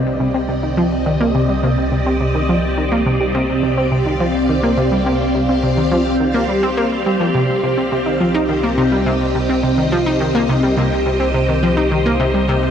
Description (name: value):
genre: ambient, sequencer-driven space music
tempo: 105 BPM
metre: 4/4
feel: straight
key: C minor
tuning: A4 = 440 Hz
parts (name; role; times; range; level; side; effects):
- phased string machine; sustained chords; 0.0-12.7 s; C4 to F5; -18 LUFS; equal; ensemble chorus, phaser, shimmer reverb
- fat analog bass; bass; 0.0-12.7 s; C2; -23 LUFS; equal; none
- analog pluck; riff; 0.2-12.6 s; C3 to Eb4; -17 LUFS; equal; chorus, ping-pong delay
room: wet huge ambient reverb, RT60 8.1 s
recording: worn, warbling old tape, cassette tape, warbly pitch drift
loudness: -14 LUFS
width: side -8 dB against mid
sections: 0.0-12.7 A section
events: none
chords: 0.0 Cm